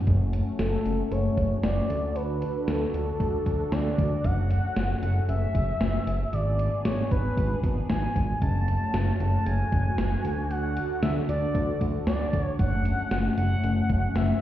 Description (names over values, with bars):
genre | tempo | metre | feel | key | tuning
synth-pop | 115 BPM | 4/4 | straight | F# minor | A4 = 439 Hz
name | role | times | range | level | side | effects
phased analog pad | sustained chords | 0.0-14.4 s | D3 to A4 | -32 LUFS | left 1 dB | phaser, chorus
fat analog bass | bass | 0.1-14.3 s | F#1 to D2 | -26 LUFS | equal | none
gated 80s digital drum machine | drums | 0.1-14.3 s | hi-hat, kick drum, snare drum | -28 LUFS | equal | gated reverb, gated reverb snare
expressive synth lead | melody | 0.6-14.4 s | A4 to A5 | -31 LUFS | equal | chorus, analog delay
room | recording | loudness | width
light reverb | heard muffled through a wall, stone room reverb, EQ | -24 LUFS | side -12 dB against mid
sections
0.1-14.4 A section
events
none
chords
0.1 F#m; 1.9 D; 4.2 F#m; 6.3 G#dim; 8.4 F#m; 10.2 D; 12.6 F#m